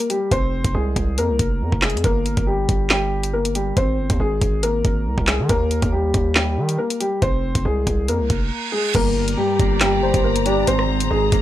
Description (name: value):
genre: hip hop, drill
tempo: 139 BPM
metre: 4/4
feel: half-time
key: G phrygian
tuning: A4 = 440 Hz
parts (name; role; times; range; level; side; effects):
- dark grand piano; melody; 0.0-11.4 s; G3 to C5; -22 LUFS; left 2 dB; none
- drill drum kit; drums; 0.0-11.4 s; crash cymbal, handclaps, hi-hat, kick drum, rim click, snare drum; -21 LUFS; right 1 dB; overdrive
- distorted 808-style bass; bass; 0.3-11.4 s; F1 to Eb3; -22 LUFS; right 1 dB; distortion
- reverse cymbal; sound effects; 8.3-8.9 s; none; -26 LUFS; right 8 dB; none
- mellow electric guitar; accompaniment; 8.9-11.4 s; G2 to D4; -24 LUFS; equal; none
- warm studio string section; sustained chords; 8.9-11.4 s; G4 to Bb5; -27 LUFS; left 4 dB; none
- gliding portamento lead; second line; 10.0-10.7 s; C5 to D5; -25 LUFS; equal; chorus, analog delay
room: little or no reverb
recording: dry, gritty hardware recording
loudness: -17 LUFS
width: side -13 dB against mid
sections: 0.0-8.9 A section; 8.9-11.4 B section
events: reverse cymbal 8.3-8.9; break 8.5-8.9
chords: 0.3 Fm; 2.0 Gm; 3.8 Abadd9; 5.5 Eb; 7.2 Fm; 8.9 Gm; 10.7 Abadd9